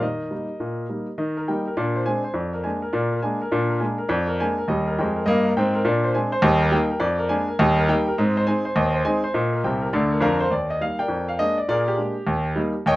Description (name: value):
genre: jazz, stride piano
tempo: 206 BPM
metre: 4/4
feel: swing 63% on 8ths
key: Eb major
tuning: A4 = 440 Hz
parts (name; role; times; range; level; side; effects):
- warm grand piano; solo; 0.0-13.0 s; C2 to Ab5; -20 LUFS; equal; none
room: light reverb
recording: none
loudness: -20 LUFS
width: side -17 dB against mid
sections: 0.0-1.2 A section; 1.2-10.5 B section; 10.5-13.0 A section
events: grand piano fill 9.6-10.5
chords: 0.0 Eb; 1.8 Bb9; 2.4 Bb7/F; 3.5 Bb7; 4.1 Bb7/F; 4.7 Eb; 5.9 Bb9; 6.4 Eb; 7.0 Bb7/F; 7.6 Eb; 8.2 Ab; 9.3 Eb/Bb; 9.9 Bb; 10.5 Eb; 11.1 Bb7/F; 11.7 Bb7; 12.3 Eb